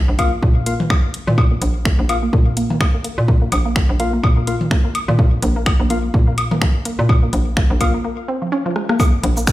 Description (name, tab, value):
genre	minimal techno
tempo	126 BPM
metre	4/4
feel	swing 57% on 16ths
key	unclear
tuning	A4 = 440 Hz
part	hollow knocking FM bass	bass	0.0-9.5 s	Bb1 to Bb2	-20 LUFS	equal	sidechain pumping
part	percussive organ stab	stabs	0.2-7.9 s	Bb3 to F5	-26 LUFS	left 3 dB	chorus, ping-pong delay
part	electronic kick drum	drums	0.2-9.5 s	none	-16 LUFS	equal	studio ambience
part	garage drum kit	drums	0.2-9.5 s	finger snaps, hi-hat, rim click, shaker	-25 LUFS	equal	studio ambience
part	electronic woodblock and toms	percussion	0.2-9.1 s	none	-23 LUFS	left 1 dB	studio ambience, ping-pong delay
part	resonant blip pluck	riff	1.5-9.4 s	F3 to Db4	-24 LUFS	equal	chorus, vintage 12-bit sampler grit, sidechain pumping, ping-pong delay
room	light reverb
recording	played on a big sound system in a bare room, stone room reverb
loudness	-14 LUFS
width	side -16 dB against mid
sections	0.0-9.0 A section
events	break 8.0-9.0; drum fill 8.8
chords	0.0 Bb5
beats	0.43 0.90 | 1.38 1.85 2.33 2.81 | 3.28 3.76 4.24 4.71 | 5.19 5.66 6.14 6.62 | 7.09 7.57 8.04 8.52 | 9.00 9.47